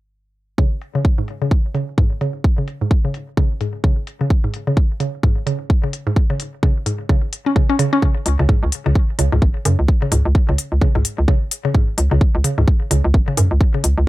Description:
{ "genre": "minimal techno", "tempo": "129 BPM", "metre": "4/4", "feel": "swing 59% on 16ths", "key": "unclear", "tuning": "A4 = 441 Hz", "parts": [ { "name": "mallet-like synth pluck", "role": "riff", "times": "0.6-13.8 s", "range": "G#2 to C#4", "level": "-21 LUFS", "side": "equal", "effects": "chorus, sidechain pumping, ping-pong delay" }, { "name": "electronic kick drum", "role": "drums", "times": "0.6-13.7 s", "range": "none", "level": "-16 LUFS", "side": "equal", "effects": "none" }, { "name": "electronic hi-hat", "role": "drums", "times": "0.8-13.9 s", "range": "none", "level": "-23 LUFS", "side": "left 4 dB", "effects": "low-pass filter on hats, low-pass filter on room" }, { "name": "hollow knocking FM bass", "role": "bass", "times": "8.3-14.1 s", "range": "G#1 to F#2", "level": "-16 LUFS", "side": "equal", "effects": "tube saturation, sidechain pumping" } ], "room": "light reverb", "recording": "none", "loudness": "-15 LUFS", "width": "side -18 dB against mid", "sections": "0.6-14.1 A section", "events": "filter sweep on drum 0.6-14.1; filter sweep on synth arpeggio sound 0.6-14.1", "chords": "none" }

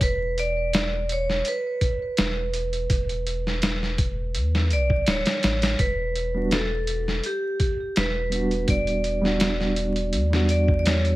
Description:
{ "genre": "trip hop", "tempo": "83 BPM", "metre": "4/4", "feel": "swing 53% on 16ths", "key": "E dorian", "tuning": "A4 = 440 Hz", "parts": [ { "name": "vibraphone with medium hard mallets", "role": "melody", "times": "0.0-11.2 s", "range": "G4 to D5", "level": "-27 LUFS", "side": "right 1 dB", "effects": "tape echo" }, { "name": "soft dub sub bass", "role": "bass", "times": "0.0-11.2 s", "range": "D1 to E2", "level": "-26 LUFS", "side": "equal", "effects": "none" }, { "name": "trip hop sampler-style drum kit", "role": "drums", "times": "0.0-11.2 s", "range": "hi-hat, kick drum, snare drum", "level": "-24 LUFS", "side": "equal", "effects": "none" }, { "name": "mellow reed electric piano", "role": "accompaniment", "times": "6.3-11.2 s", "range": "G3 to F#4", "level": "-26 LUFS", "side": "right 1 dB", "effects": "medium tremolo" } ], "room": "digital ambience", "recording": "vinyl crackle", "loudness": "-21 LUFS", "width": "side -17 dB against mid", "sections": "0.0-11.2 A section", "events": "none", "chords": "0.0 Em9" }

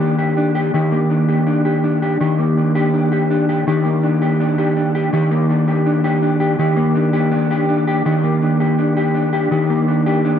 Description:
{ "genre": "dream pop", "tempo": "82 BPM", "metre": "4/4", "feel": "straight", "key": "Eb major", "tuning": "A4 = 443 Hz", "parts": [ { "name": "mellow electric guitar", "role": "solo", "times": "0.0-10.4 s", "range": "Eb3 to G4", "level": "-14 LUFS", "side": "equal", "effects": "ensemble chorus, ping-pong delay" } ], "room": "moderate plate reverb, RT60 2.7 s", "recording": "none", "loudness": "-14 LUFS", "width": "side -8 dB against mid", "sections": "0.0-10.4 A section", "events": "none", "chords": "0.0 Ebmaj7" }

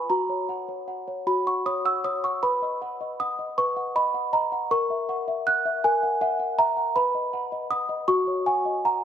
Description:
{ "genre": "classical, lullaby for celesta", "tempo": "53 BPM (dotted quarters)", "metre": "6/8", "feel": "rubato", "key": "B major", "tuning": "A4 = 440 Hz", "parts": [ { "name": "small celesta", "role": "solo", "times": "0.0-9.0 s", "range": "E#4 to F#6", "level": "-23 LUFS", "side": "equal", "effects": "tape echo" } ], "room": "moderate recital hall reverb, RT60 1.4 s", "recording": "none", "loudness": "-23 LUFS", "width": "side -9 dB against mid", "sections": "0.0-9.0 A section", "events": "none", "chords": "0.1 F#; 2.4 B; 4.7 F#7/A#; 7.0 B; 8.1 F#5" }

